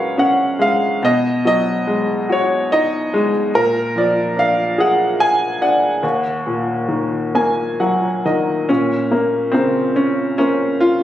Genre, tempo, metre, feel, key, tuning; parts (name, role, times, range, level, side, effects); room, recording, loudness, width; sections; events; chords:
classical, lyrical solo piano; 71 BPM; 3/4; rubato; Eb minor; A4 = 439 Hz
clear upright piano; solo; 0.0-11.0 s; Eb2 to Ab5; -15 LUFS; equal
light reverb; recorded on a phone in the room, studio reverb; -15 LUFS; side -12 dB against mid
0.0-8.7 A section; 8.7-11.0 B section
upright piano fill 6.9-8.7
0.0 Gbsus2; 1.0 B6; 3.6 Bb7; 6.0 Ebm; 8.7 Bbmadd9